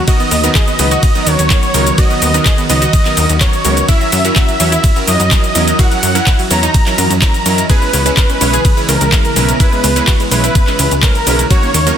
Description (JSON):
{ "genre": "progressive house", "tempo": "126 BPM", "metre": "4/4", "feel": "straight", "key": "C# dorian", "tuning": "A4 = 441 Hz", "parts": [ { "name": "wide unison lead", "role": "melody", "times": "0.0-11.9 s", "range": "A#4 to A#5", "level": "-17 LUFS", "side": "equal", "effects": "sidechain pumping, ping-pong delay" }, { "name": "evolving wavetable pad", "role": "sustained chords", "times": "0.0-12.0 s", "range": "C#3 to D#5", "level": "-21 LUFS", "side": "equal", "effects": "chorus, built-in reverb, phaser, sidechain pumping" }, { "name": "supersaw stab", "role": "stabs", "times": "0.0-12.0 s", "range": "F#3 to C#5", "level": "-20 LUFS", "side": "right 2 dB", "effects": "sidechain pumping" }, { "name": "wide unison pluck", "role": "arpeggios", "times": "0.1-11.9 s", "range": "F#3 to A#4", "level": "-22 LUFS", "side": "right 1 dB", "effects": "sidechain pumping, ping-pong delay" }, { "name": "deep house drum kit", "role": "drums", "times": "0.1-12.0 s", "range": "cabasa, handclaps, hi-hat, ride cymbal", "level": "-17 LUFS", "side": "equal", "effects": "overdrive" }, { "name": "electronic kick drum", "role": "drums", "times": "0.1-11.6 s", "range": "none", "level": "-12 LUFS", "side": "equal", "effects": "none" }, { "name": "plucky analog bass", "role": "bass", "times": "0.3-11.9 s", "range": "B1 to F#2", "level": "-16 LUFS", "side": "equal", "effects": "sidechain pumping" } ], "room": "light reverb, digital ambience", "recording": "dense, heavily limited modern master", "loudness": "-9 LUFS", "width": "side -9 dB against mid", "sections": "0.0-12.0 A section", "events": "none", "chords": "0.1 Bmaj7; 3.9 F#7; 7.7 C#m7" }